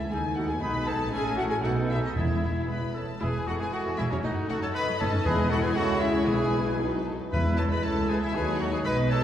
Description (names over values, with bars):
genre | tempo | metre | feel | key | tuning
quick classical-period movement for symphony orchestra | 117 BPM | 2/4 | straight | E major | A4 = 444 Hz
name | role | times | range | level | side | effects
warm studio violin section | melody | 0.0-9.2 s | C#5 to B5 | -35 LUFS | left 4 dB | none
concert flute | second line | 0.0-9.2 s | E4 to B5 | -35 LUFS | left 2 dB | none
rich chamber violin section | second line | 0.0-9.2 s | A3 to D#5 | -39 LUFS | left 2 dB | none
warm chamber viola section | accompaniment | 0.0-9.2 s | F#3 to B4 | -33 LUFS | equal | none
mellow French horn section | sustained chords | 0.0-9.2 s | F#3 to E4 | -33 LUFS | left 2 dB | none
warm chamber cello section | bass | 0.0-9.2 s | C#2 to C#3 | -34 LUFS | right 2 dB | none
warm chamber double bass section | bass | 0.0-9.2 s | E1 to D#2 | -32 LUFS | right 1 dB | none
bright clarinet | second line | 0.1-9.2 s | C#4 to B4 | -36 LUFS | equal | none
warm oboe | second line | 0.1-3.0 s | G#4 to A4 | -41 LUFS | right 1 dB | none
timpani | percussion | 2.2-2.9, 5.2-7.8 s | E2 to B2 | -32 LUFS | equal | none
warm trumpet | stabs | 2.7-9.2 s | C#4 to B4 | -34 LUFS | right 1 dB | none
room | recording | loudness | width
wet concert hall reverb, RT60 2.3 s | heard from further back in the room, vinyl crackle | -24 LUFS | side -10 dB against mid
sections
0.0-3.2 A section; 3.2-9.2 B section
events
none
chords
0.1 F#m69/D#; 0.6 G#m/B; 1.1 F#madd9/A; 1.6 B7; 2.2 E; 4.2 D#dim/F#; 5.3 E; 5.8 C#m; 6.3 E/B; 6.8 B; 7.3 E; 7.8 A/C#; 8.4 D#dim